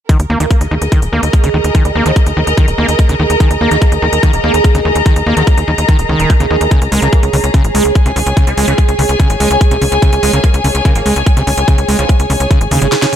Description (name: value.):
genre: psychedelic trance.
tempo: 145 BPM.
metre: 4/4.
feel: straight.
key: unclear.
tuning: A4 = 439 Hz.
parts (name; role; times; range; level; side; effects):
evolving wavetable pad; sustained chords; 0.7-13.2 s; Ab4; -19 LUFS; right 5 dB; chorus, built-in reverb, phaser, sidechain pumping.
overdriven acid bass; riff; 0.1-13.2 s; C3 to Bb3; -18 LUFS; right 1 dB; auto-pan, cassette tape, sidechain pumping, dub echo.
electronic kick drum; drums; 0.1-12.6 s; none; -9 LUFS; equal; overdrive.
techno drum kit; drums; 0.1-13.2 s; hi-hat, snare drum; -22 LUFS; equal; none.
dark studio string section; texture; 0.1-13.2 s; Ab4 to Bb5; -18 LUFS; left 3 dB; sidechain pumping.
tight sequencer bass; bass; 0.2-12.9 s; Eb1 to Eb2; -15 LUFS; equal; none.
resonant blip pluck; second line; 0.4-13.2 s; Eb3 to Bb3; -27 LUFS; right 2 dB; none.
room: light reverb, digital ambience.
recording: none.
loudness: -9 LUFS.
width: side -10 dB against mid.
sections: 0.1-13.2 A section.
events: kick drops out 12.9; drum fill 12.9.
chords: 0.1 Eb5; 6.7 Db5.